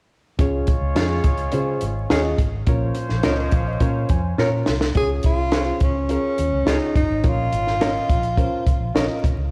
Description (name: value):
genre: uptempo 1960s-style soul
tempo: 105 BPM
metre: 4/4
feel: straight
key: Db major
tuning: A4 = 438 Hz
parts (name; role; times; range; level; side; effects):
- warm horn section; second line; 0.4-4.6 s; F3 to Db5; -33 LUFS; equal; none
- barky reed electric piano; accompaniment; 0.4-9.2 s; Bb2 to C6; -28 LUFS; equal; overdrive, slapback echo
- vintage muted fingered electric bass; bass; 0.4-9.5 s; Gb1 to Db3; -26 LUFS; equal; tube saturation
- compact cocktail drum kit; drums; 0.4-9.4 s; hi-hat, kick drum, snare drum; -23 LUFS; equal; none
- semi-hollow electric guitar; stabs; 1.0-9.1 s; F4 to Db5; -31 LUFS; equal; none
- breathy tenor saxophone; melody; 5.0-9.3 s; Db4 to Ab4; -26 LUFS; equal; tape echo
room: light reverb, small room ambience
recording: live gig heard through the venue's PA, club reverb, vinyl crackle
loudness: -21 LUFS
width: mono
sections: 0.4-5.0 A section; 5.0-9.5 B section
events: reed electric piano fill 3.2-5.0; drum fill 4.4-5.0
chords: 0.4 Db; 2.7 Bbm; 5.0 Db; 7.2 Bbm